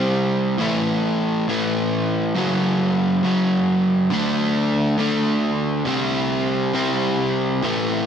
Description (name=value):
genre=rock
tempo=137 BPM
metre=4/4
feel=straight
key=unclear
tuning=A4 = 441 Hz
part: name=overdriven semi-hollow guitar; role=solo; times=0.0-8.1 s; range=F#2 to D4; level=-18 LUFS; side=equal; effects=analog delay
room=wet lush hall reverb, RT60 2.7 s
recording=big arena sound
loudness=-18 LUFS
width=side -8 dB against mid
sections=0.0-8.1 A section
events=none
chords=0.0 C5; 0.6 A5; 2.3 F#5; 4.1 D5; 5.9 C5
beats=0.15 | 0.59 1.03 1.47 1.91 | 2.35 2.79 3.23 3.67 | 4.11 4.54 4.98 5.42 | 5.86 6.30 6.74 7.18 | 7.62